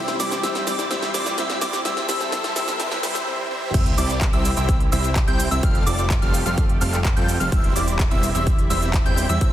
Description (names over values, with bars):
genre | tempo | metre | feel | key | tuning
EDM, festival progressive house | 127 BPM | 4/4 | straight | C major | A4 = 440 Hz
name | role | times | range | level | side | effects
felt-muted upright piano | accompaniment | 0.0-3.8 s | C3 to G4 | -32 LUFS | left 3 dB | sidechain pumping, digital delay
lush unison pad | sustained chords | 0.0-9.5 s | C3 to A4 | -32 LUFS | right 1 dB | chorus, sidechain pumping
plucky unison lead | arpeggios | 0.0-9.5 s | D6 to G6 | -28 LUFS | left 1 dB | sidechain pumping, digital delay
dense compressed supersaw | riff | 0.0-9.5 s | G3 to G5 | -26 LUFS | right 1 dB | cassette tape, sidechain pumping, digital delay
riser, swell and sub drop | sound effects | 0.1-5.6 s | none | -32 LUFS | equal | none
big-room dance drum kit | drums | 0.1-9.5 s | crash cymbal, handclaps, hi-hat, shaker, snare drum | -28 LUFS | right 1 dB | high-pass filter on snare, small room ambience, high-pass filter on hats, high-pass filter on perc, high-pass filter on cymbals
fat analog bass | bass | 3.7-9.5 s | E1 to F2 | -24 LUFS | equal | sidechain pumping
electronic kick drum | drums | 3.7-9.5 s | none | -20 LUFS | equal | small room ambience
room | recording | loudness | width
light reverb | dense, heavily limited modern master, high-pass filter | -18 LUFS | side -12 dB against mid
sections
0.0-3.7 A section; 3.7-9.5 B section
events
build-up 0.0-3.7; drum fill 0.0-3.3; swell 2.8-3.7; drop 3.7-9.5; impact 3.7-5.6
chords
0.0 C; 1.9 Am; 3.7 C; 5.6 Fadd9; 7.5 C/E